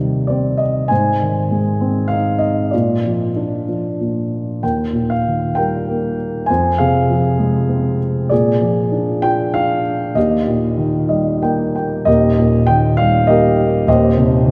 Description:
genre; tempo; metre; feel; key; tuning
classical, lyrical solo piano; 98 BPM; 3/4; rubato; Eb major; A4 = 439 Hz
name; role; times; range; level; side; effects
dark baby grand piano; solo; 0.0-14.5 s; Eb1 to Ab5; -16 LUFS; equal; none
room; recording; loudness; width
wet church reverb, RT60 3.8 s; recorded in a church or concert hall; -16 LUFS; mono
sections
0.0-12.1 A section; 12.1-14.5 A section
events
grand piano fill 10.8-12.1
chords
0.0 Cm/Eb; 0.9 Ab; 2.7 Bb; 4.6 Eb; 6.5 Fm; 8.3 Bb7; 10.2 Eb; 13.9 Cm/Eb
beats
0.30 | 0.90 1.51 2.11 | 2.73 3.35 3.99 | 4.62 5.25 5.88 | 6.49 7.10 7.71 | 8.31 8.92 9.54 | 10.16 10.78 11.43 | 12.07 12.68 13.29 | 13.87 14.45

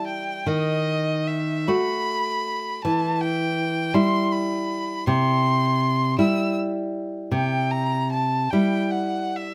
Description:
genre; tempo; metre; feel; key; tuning
romantic duo for violin and classical guitar; 45-55 BPM (dotted quarters); 6/8; rubato; unclear; A4 = 440 Hz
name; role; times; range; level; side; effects
rich violin; melody; 0.0-9.5 s; D#5 to E6; -28 LUFS; equal; none
nylon-string guitar; accompaniment; 0.0-9.5 s; C3 to F#4; -25 LUFS; equal; none
room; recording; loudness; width
light reverb; none; -23 LUFS; mono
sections
0.0-9.5 A section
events
none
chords
0.5 B7/D#; 2.9 Em; 5.1 C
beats
| 0.47 1.70 | 2.85 3.96 | 5.08 6.20 | 7.34 8.52

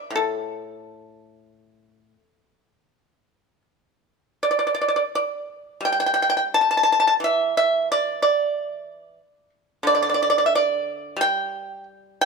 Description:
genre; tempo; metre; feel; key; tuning
chinese traditional, Chinese solo plucked strings; 76-92 BPM; 4/4; rubato; unclear; A4 = 440 Hz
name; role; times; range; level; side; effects
pipa; solo; 0.0-12.3 s; A2 to A5; -19 LUFS; right 1 dB; none
room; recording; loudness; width
moderate recital hall reverb, RT60 1.5 s; close, detailed microphones; -19 LUFS; side -4 dB against mid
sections
0.0-4.4 A section; 4.4-12.3 B section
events
none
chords
none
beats
0.12 0.79 | 1.46 2.16 2.88 3.64 | 4.40 5.12 5.83 6.54 | 7.22 7.89 8.55 9.21 | 9.86 10.52 11.19 11.86

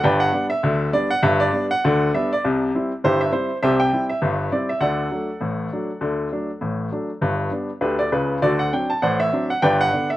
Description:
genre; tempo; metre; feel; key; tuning
ragtime piano; 100 BPM; 2/4; swing 57% on 16ths; G major; A4 = 440 Hz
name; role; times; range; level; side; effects
warm baby grand piano; solo; 0.0-10.2 s; G1 to A5; -18 LUFS; equal; none
room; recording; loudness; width
little or no reverb; recorded outdoors, with no room sound, nothing above 10.6 kHz; -19 LUFS; side -15 dB against mid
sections
0.0-10.2 A section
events
none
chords
0.0 G; 2.4 C; 4.8 D; 7.2 G; 8.4 D7; 9.6 G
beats
| 0.04 0.64 | 1.23 1.83 | 2.43 3.03 | 3.63 4.22 | 4.83 5.43 | 6.03 6.63 | 7.24 7.84 | 8.44 9.04 | 9.64

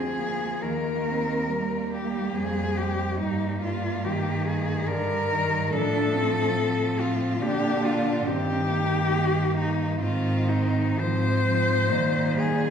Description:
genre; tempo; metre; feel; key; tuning
classical, lyrical piece for cello ensemble; 58-72 BPM; 3/4; rubato; Eb major; A4 = 441 Hz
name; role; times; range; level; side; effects
rich cello; melody; 0.0-12.7 s; Eb4 to C5; -27 LUFS; left 3 dB; none
rich cello; second line; 0.0-12.7 s; G3 to D4; -30 LUFS; right 3 dB; none
rich cello; accompaniment; 0.0-12.7 s; D3 to G3; -30 LUFS; right 1 dB; none
clear cello; bass; 0.0-12.7 s; D2 to Bb2; -29 LUFS; equal; none
room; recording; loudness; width
wet scoring stage reverb, RT60 1.6 s; heard from further back in the room; -23 LUFS; side -7 dB against mid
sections
0.0-12.7 A section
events
none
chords
0.0 Bb7; 0.6 Eb; 3.2 Eb/G; 5.7 F/A; 7.4 Bb; 8.3 Eb/G; 10.0 Ab; 11.0 Fm/Ab; 11.9 Eb/Bb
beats
| 0.63 1.52 2.36 | 3.21 4.05 4.88 | 5.73 6.58 7.42 | 8.28 9.14 10.01 | 10.99 11.90

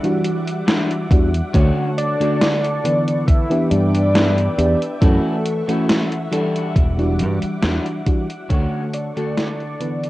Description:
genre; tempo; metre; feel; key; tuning
vaporwave; 69 BPM; 4/4; straight; D major; A4 = 440 Hz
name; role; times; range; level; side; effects
mellow FM electric piano; accompaniment; 0.0-10.1 s; D3 to C#5; -21 LUFS; equal; analog chorus, cassette tape
soft string machine; sustained chords; 0.0-10.1 s; G3 to D6; -31 LUFS; equal; ensemble chorus, cassette tape
electric guitar at the edge of break-up; riff; 0.0-10.1 s; G3 to A4; -31 LUFS; left 3 dB; wide subtle chorus, vintage 12-bit sampler grit, cassette tape, analog delay
gated 80s digital drum machine; drums; 0.0-10.1 s; hi-hat, snare drum; -21 LUFS; equal; gated reverb, gated reverb snare, vintage 12-bit sampler grit, cassette tape
fingered electric bass; bass; 1.1-8.7 s; E1 to G2; -18 LUFS; equal; none
electronic kick drum; drums; 1.1-8.7 s; none; -15 LUFS; equal; vintage 12-bit sampler grit, cassette tape
warm velvety synth lead; melody; 2.0-10.1 s; A4 to E5; -22 LUFS; equal; chorus, tremolo, tape echo
room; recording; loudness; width
moderate spring reverb, RT60 2.6 s; home recording on cassette; -16 LUFS; side -17 dB against mid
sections
0.0-10.1 A section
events
fade-out 6.2-10.1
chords
0.0 Em9; 1.5 Dmaj7; 3.3 G6; 5.0 F#m7; 6.3 Em9; 8.5 Dmaj7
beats
0.67 | 1.54 2.41 3.28 4.15 | 5.02 5.89 6.76 7.63 | 8.50 9.37

